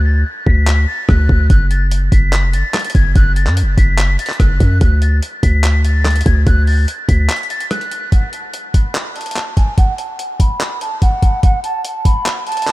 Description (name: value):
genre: hip hop, trap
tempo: 145 BPM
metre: 4/4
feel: half-time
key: unclear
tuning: A4 = 440 Hz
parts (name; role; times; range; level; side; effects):
- warm 808-style bass; bass; 0.0-7.3 s; E#1 to F#2; -13 LUFS; equal; none
- bright silver concert flute; melody; 0.1-12.7 s; F#5 to B6; -21 LUFS; equal; low-pass filter, analog delay
- dusty soul sampler-style drum kit; drums; 0.5-12.7 s; handclaps, hi-hat, kick drum, rim click; -15 LUFS; equal; none
room: digital ambience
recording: none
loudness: -12 LUFS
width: side -18 dB against mid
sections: 0.0-8.1 A section; 8.1-12.7 B section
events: break 0.0-1.5, 7.3-8.1; filter sweep on flute 8.1-12.7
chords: 0.0 D; 1.5 F#m; 4.8 D; 8.1 N.C.